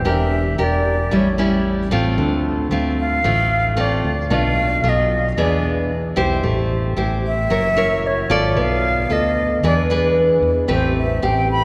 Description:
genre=bossa nova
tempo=113 BPM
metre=4/4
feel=straight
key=A minor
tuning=A4 = 437 Hz
part: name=silver concert flute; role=melody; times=0.0-11.6 s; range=C5 to B5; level=-24 LUFS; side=equal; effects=none
part: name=nylon-string guitar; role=accompaniment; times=0.0-11.6 s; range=A2 to D5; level=-21 LUFS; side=equal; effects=none
part: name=fingered electric bass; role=bass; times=0.0-11.6 s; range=E1 to E2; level=-24 LUFS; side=equal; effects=none
room=wet church reverb, RT60 3.7 s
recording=recorded in a church or concert hall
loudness=-18 LUFS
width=mono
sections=0.0-11.6 A section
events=flute solo 0.0-11.6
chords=0.1 Em7b5; 1.1 A7; 2.2 Dm7; 4.3 Bm7b5; 5.4 E7; 6.4 Am7; 7.5 F#7; 8.6 Bm7b5; 9.6 E7; 10.7 Am9

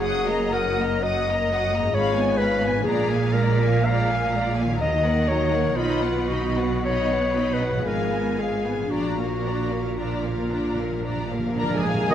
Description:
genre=classical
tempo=54-68 BPM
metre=3/4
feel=rubato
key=unclear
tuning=A4 = 440 Hz
part: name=warm symphonic violin section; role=melody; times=0.0-12.1 s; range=F5 to Eb6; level=-33 LUFS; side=left 2 dB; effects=none
part: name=dark studio violin section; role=second line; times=0.0-12.1 s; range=Ab4 to Ab5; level=-32 LUFS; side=left 2 dB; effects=none
part: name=warm clarinet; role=second line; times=0.0-12.1 s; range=Eb4 to F5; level=-25 LUFS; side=left 2 dB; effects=none
part: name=warm symphonic viola section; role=accompaniment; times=0.0-12.1 s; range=Gb3 to D#4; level=-29 LUFS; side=right 1 dB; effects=none
part: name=concert harp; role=arpeggios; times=0.0-12.1 s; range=Gb2 to Cb5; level=-34 LUFS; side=left 5 dB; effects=none
part: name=rich symphonic cello section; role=bass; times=0.0-12.1 s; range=Eb2 to Eb3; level=-28 LUFS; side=right 2 dB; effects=none
part: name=rich symphonic double bass section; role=bass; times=0.0-12.1 s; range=Gb1 to Eb2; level=-29 LUFS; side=right 4 dB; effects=none
part: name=timpani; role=percussion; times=2.8-4.3, 8.9-12.1 s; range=Bb2 to Eb3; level=-33 LUFS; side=equal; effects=none
part: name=mellow small flute group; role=second line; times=11.6-12.1 s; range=Ab4 to Bb4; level=-30 LUFS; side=right 1 dB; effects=none
part: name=warm bassoon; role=accompaniment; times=12.1 s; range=Eb3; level=-21 LUFS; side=right 1 dB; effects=none
part: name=warm French horn section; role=sustained chords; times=12.1 s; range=none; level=barely audible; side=none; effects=none
part: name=warm trumpet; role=stabs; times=12.1 s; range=none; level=barely audible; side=none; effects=none
part: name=warm tuba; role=bass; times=12.1 s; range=Eb2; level=-29 LUFS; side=right 3 dB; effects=none
room=wet concert hall reverb, RT60 2.0 s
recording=faint mains hum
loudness=-21 LUFS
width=side -10 dB against mid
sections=0.0-12.1 A section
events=timpani fill 8.9-12.1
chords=0.0 Ebm/Gb; 1.9 Fdim/Ab; 2.9 Bb7; 4.8 Ebm; 5.8 B; 7.9 Fdim/Ab; 8.9 Bb

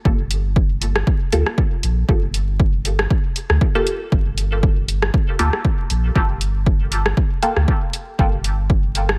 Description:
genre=dub techno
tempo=118 BPM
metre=4/4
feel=swing 55% on 16ths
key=G minor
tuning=A4 = 439 Hz
part: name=warm sub bass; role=bass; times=0.1-9.2 s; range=G1 to D2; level=-22 LUFS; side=equal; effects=sidechain pumping
part: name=electronic kick drum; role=drums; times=0.1-8.8 s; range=none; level=-20 LUFS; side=equal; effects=overdrive
part: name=punchy analog drum machine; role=drums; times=0.3-9.2 s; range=hi-hat, rim click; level=-25 LUFS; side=equal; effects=none
part: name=filtered dub chord stab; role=stabs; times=1.3-7.6 s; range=Bb3 to A4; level=-27 LUFS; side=equal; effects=phaser, dub echo
room=little or no reverb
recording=vinyl crackle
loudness=-19 LUFS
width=mono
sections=0.0-9.2 A section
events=none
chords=0.0 Gm9

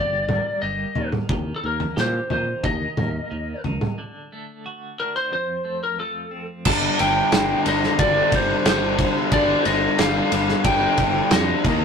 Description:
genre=quiet-loud alternative rock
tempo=90 BPM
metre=4/4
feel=straight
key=G minor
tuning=A4 = 440 Hz
part: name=lightly driven lead guitar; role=melody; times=0.0-11.8 s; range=A4 to A5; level=-23 LUFS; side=left 1 dB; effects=none
part: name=twelve-string electric guitar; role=arpeggios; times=0.0-6.7 s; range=F2 to G4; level=-35 LUFS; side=right 2 dB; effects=tremolo
part: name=fretless electric bass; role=bass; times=0.0-11.8 s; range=G1 to Bb2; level=-28 LUFS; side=right 1 dB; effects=none
part: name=loose indie drum kit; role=drums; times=0.3-11.8 s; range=crash cymbal, kick drum, ride cymbal, snare drum, toms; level=-22 LUFS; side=equal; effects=none
part: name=cranked stack guitar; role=riff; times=6.7-11.8 s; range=G2 to Eb4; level=-24 LUFS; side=left 7 dB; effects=overdrive
part: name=fuzz guitar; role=riff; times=6.7-11.8 s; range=G2 to Eb4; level=-26 LUFS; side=right 6 dB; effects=distortion
room=light reverb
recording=rough rehearsal-room recording, tube saturation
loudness=-19 LUFS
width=side -6 dB against mid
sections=0.0-6.7 A section; 6.7-11.8 B section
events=break 4.0-6.7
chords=0.0 Gm; 1.0 Eb; 4.0 D; 5.3 F; 6.7 G5

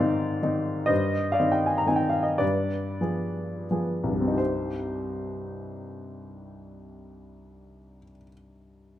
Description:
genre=classical, romantic nocturne for solo piano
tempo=27-49 BPM (dotted quarters)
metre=6/8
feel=rubato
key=C minor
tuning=A4 = 436 Hz
part: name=warm baby grand piano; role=solo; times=0.0-9.0 s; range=C2 to Bb5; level=-25 LUFS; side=left 1 dB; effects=none
room=moderate recital hall reverb, RT60 1.8 s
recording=close, detailed microphones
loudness=-24 LUFS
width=side -12 dB against mid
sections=0.0-4.4 A section; 4.4-8.5 B section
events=slowing down 0.0-4.4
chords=0.0 Ab; 0.9 Cm/G; 2.4 G7b9; 4.4 Cm

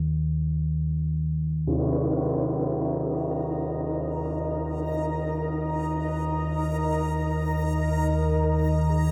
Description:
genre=dark ambient drone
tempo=50 BPM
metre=4/4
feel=straight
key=unclear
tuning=A4 = 440 Hz
part: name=deep rumbling drone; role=drone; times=0.0-9.1 s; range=Eb2 to Eb3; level=-29 LUFS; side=equal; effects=built-in reverb
part: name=backwards swelling texture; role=texture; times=3.6-9.1 s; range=Bb5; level=-42 LUFS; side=equal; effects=built-in reverb
part: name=mellow horn-like synth lead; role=melody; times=1.7-9.1 s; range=Ab4 to Cb5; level=-39 LUFS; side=equal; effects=phaser, lush chorus, cassette tape, tape echo
part: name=deep dark ambient pad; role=sustained chords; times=3.2-9.1 s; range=Eb4 to Bb5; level=-34 LUFS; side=equal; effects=chorus, built-in reverb
part: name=tam-tam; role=percussion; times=1.7-1.9 s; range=none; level=-32 LUFS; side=equal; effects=low-pass filter on cymbals
room=wet cathedral reverb, RT60 5.7 s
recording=none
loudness=-26 LUFS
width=mono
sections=0.0-1.7 A section; 1.7-9.1 B section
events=fade-in on synth texture 1.7-9.1; fade-in on soft synth lead 1.7-9.1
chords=0.0 N.C.; 1.7 Eb5

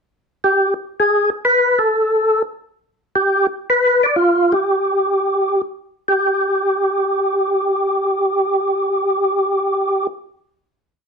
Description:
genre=jazz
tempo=148-175 BPM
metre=4/4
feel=swing 64% on 8ths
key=G mixolydian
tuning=A4 = 439 Hz
part: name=percussive tonewheel organ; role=solo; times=0.4-10.1 s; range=F4 to D5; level=-15 LUFS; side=equal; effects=slow rotary speaker, overdrive, chorus vibrato
room=moderate studio reverb, RT60 0.7 s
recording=dark, warm production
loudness=-15 LUFS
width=side -5 dB against mid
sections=0.4-6.1 A section; 6.1-9.3 final note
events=slowing down 3.1-6.1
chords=none

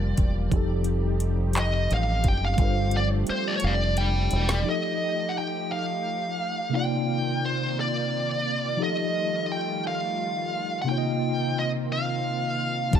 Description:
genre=slow six-eight R&B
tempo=58 BPM (dotted quarters)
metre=6/8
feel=straight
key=C dorian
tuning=A4 = 441 Hz
part: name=mellow tine electric piano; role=accompaniment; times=0.0-13.0 s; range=C3 to A5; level=-29 LUFS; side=equal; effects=medium stereo tremolo
part: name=warm analog pad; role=sustained chords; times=0.0-13.0 s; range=Eb3 to G4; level=-35 LUFS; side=equal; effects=chorus
part: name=deep dub fingered electric bass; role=bass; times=0.0-4.6, 12.9-13.0 s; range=E1 to A1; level=-25 LUFS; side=equal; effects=none
part: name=smooth R&B drum kit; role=drums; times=0.2-4.6, 12.9-13.0 s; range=handclaps, hi-hat, kick drum, snare drum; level=-24 LUFS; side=equal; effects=none
part: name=high-gain lead guitar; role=melody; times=1.6-13.0 s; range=C5 to A5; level=-28 LUFS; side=equal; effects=distortion, digital delay
room=little or no reverb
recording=none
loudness=-23 LUFS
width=side -9 dB against mid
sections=0.0-4.7 A section; 4.7-13.0 B section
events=lead electric guitar solo 0.0-4.7; drum fill 2.6-4.7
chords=0.0 Gm9; 0.5 F9; 2.6 G9sus4; 4.7 F9; 6.7 Cm11; 8.8 F9; 10.9 Cm7

